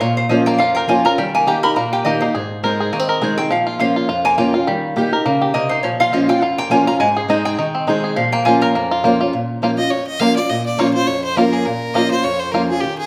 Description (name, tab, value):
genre	bluegrass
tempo	206 BPM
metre	4/4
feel	swing 56% on 8ths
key	Bb dorian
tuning	A4 = 440 Hz
part	lap resonator guitar	second line	0.0-9.0 s	C5 to Cb6	-22 LUFS	equal	none
part	picked steel-string acoustic guitar	accompaniment	0.0-13.1 s	F2 to Ab4	-20 LUFS	equal	none
part	bluegrass banjo	arpeggios	0.0-12.6 s	F3 to Bb4	-22 LUFS	equal	none
part	clear fiddle	melody	9.8-13.1 s	G4 to F5	-22 LUFS	equal	none
room	wet large studio reverb, RT60 1.3 s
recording	none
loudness	-17 LUFS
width	mono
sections	0.0-9.3 A section; 9.3-13.1 B section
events	resonator guitar played with a steel bar solo 0.0-9.3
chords	0.0 Bbm; 1.2 Eb; 2.3 Ab; 3.5 Bbm; 4.7 Eb; 5.8 Bbm; 7.0 Ab; 8.2 Bbm